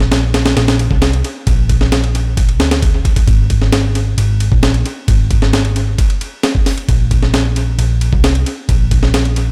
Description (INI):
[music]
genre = breakbeat, breaks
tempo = 133 BPM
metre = 4/4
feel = straight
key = unclear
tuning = A4 = 437 Hz
[part]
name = hollow-body short-scale picked electric bass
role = bass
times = 0.0-9.5 s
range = Ab1 to D2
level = -17 LUFS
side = equal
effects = tube saturation
[part]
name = breakbeat sampler-style drum kit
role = drums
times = 0.0-9.5 s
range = hi-hat, kick drum, ride cymbal, snare drum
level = -16 LUFS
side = equal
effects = dub echo
[sound]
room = digital ambience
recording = echo-heavy mix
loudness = -14 LUFS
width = mono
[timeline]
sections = 0.0-9.5 A section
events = none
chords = none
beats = 0.12 0.57 1.02 | 1.47 1.92 2.37 2.82 | 3.27 3.73 4.18 4.63 | 5.08 5.53 5.98 6.43 | 6.88 7.33 7.79 8.24 | 8.69 9.14